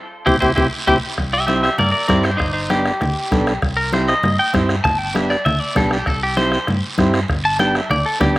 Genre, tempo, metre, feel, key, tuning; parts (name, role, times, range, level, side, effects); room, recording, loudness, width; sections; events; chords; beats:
latin, cumbia; 196 BPM; 4/4; straight; C major; A4 = 435 Hz
clean electric guitar; melody; 0.3-8.4 s; Eb4 to A5; -19 LUFS; equal; spring reverb, slapback echo
bright trombone; second line; 0.3-0.9 s; G4; -20 LUFS; left 3 dB; slapback echo
overdriven combo organ; accompaniment; 0.3-8.4 s; B3 to A4; -21 LUFS; right 2 dB
hollow-body short-scale fingered electric bass; bass; 0.3-8.4 s; G1 to G2; -23 LUFS; equal
bombo; percussion; 0.3-8.4 s; -23 LUFS; equal
congas; percussion; 0.3-8.4 s; -24 LUFS; left 2 dB
guiro; percussion; 0.3-8.4 s; -29 LUFS; right 2 dB; slapback echo
little or no reverb; recorded outdoors, with no room sound; -15 LUFS; side -18 dB against mid
0.0-1.2 A section; 1.2-8.4 B section
band accent 0.0-1.2; drum fill 0.7-1.2; clean electric guitar solo 1.2-8.4
0.0 C; 2.4 G; 3.6 C; 4.8 G; 6.1 C; 7.3 G
0.27 0.57 0.88 | 1.18 1.49 1.79 2.10 | 2.40 2.71 3.02 3.32 | 3.63 3.93 4.24 4.54 | 4.85 5.15 5.46 5.76 | 6.07 6.38 6.68 6.99 | 7.29 7.60 7.90 8.21